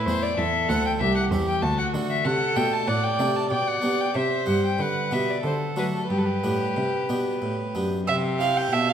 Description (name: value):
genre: classical, baroque-style sonata movement with continuo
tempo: 94 BPM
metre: 3/4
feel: rubato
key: G major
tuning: A4 = 440 Hz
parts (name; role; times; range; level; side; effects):
- rich violin; melody; 0.0-8.9 s; G4 to A5; -28 LUFS; left 5 dB; none
- warm violin; second line; 0.0-8.9 s; E4 to G5; -27 LUFS; right 4 dB; none
- harpsichord; accompaniment; 0.0-8.9 s; C2 to A4; -27 LUFS; left 1 dB; none
- rich cello; bass; 0.0-8.9 s; C2 to B3; -28 LUFS; right 1 dB; none
room: wet concert hall reverb, RT60 2.0 s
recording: none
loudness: -22 LUFS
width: side -8 dB against mid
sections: 0.0-8.1 A section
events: none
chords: 0.4 C; 1.6 D; 2.2 D5; 3.5 G/B; 4.1 C; 4.8 G/D; 5.4 D; 6.1 G; 8.1 C